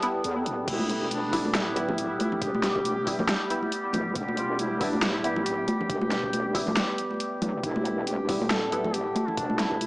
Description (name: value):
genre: deep dubstep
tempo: 138 BPM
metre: 4/4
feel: swing 57% on 16ths, half-time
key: E minor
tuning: A4 = 440 Hz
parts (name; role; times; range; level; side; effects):
- warm duduk; melody; 0.0-9.9 s; D4 to A4; -32 LUFS; equal; dub echo
- overtone-sweeping drone; sustained chords; 0.0-9.9 s; G3 to A4; -31 LUFS; equal; chorus, built-in reverb
- filtered dub chord stab; stabs; 0.0-8.9 s; G3 to E4; -33 LUFS; equal; phaser, analog chorus, dub echo
- dubstep drum kit; drums; 0.0-9.9 s; crash cymbal, hi-hat, snare drum; -29 LUFS; equal; studio ambience
- wobble bass; bass; 0.2-9.9 s; D1 to E2; -32 LUFS; equal; chorus, tube saturation
- electronic kick drum; drums; 0.7-9.8 s; none; -37 LUFS; equal; overdrive, studio ambience
- congas; percussion; 0.8-9.9 s; none; -32 LUFS; equal; dub echo
room: light reverb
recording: dry, gritty hardware recording, vinyl crackle, small speaker sound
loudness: -25 LUFS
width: side -22 dB against mid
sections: 0.0-9.9 A section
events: none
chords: 0.0 Em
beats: 0.24 | 0.68 1.11 1.55 1.98 | 2.42 2.85 3.29 3.72 | 4.16 4.59 5.03 5.46 | 5.89 6.33 6.76 7.20 | 7.63 8.07 8.50 8.94 | 9.37 9.81